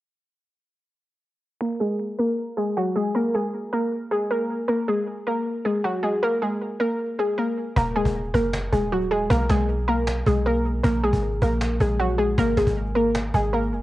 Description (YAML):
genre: hip hop, trap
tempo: 156 BPM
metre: 4/4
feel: half-time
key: unclear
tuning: A4 = 440 Hz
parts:
  - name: warbly dusty pluck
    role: melody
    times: 1.6-13.8 s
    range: Gb3 to Bb4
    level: -22 LUFS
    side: equal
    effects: chorus, low-pass filter
  - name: warm 808-style bass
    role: bass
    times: 7.8-13.8 s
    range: Eb1 to Cb2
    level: -25 LUFS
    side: equal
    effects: none
  - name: cajon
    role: drums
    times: 7.8-13.8 s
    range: none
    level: -28 LUFS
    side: equal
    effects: cassette tape
room: light reverb, small room ambience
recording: home recording on cassette, nothing above 10.8 kHz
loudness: -21 LUFS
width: side -16 dB against mid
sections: 1.6-7.8 A section; 7.8-13.8 B section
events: filter sweep on synth pluck 1.6-7.8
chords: 1.6 Gbadd9; 3.1 Absus2; 4.7 Gbadd9; 6.2 Absus2; 7.8 Ebm; 9.3 Abmadd9/Cb; 10.8 Gbadd9/Ab; 12.4 Gbadd9 (rootless)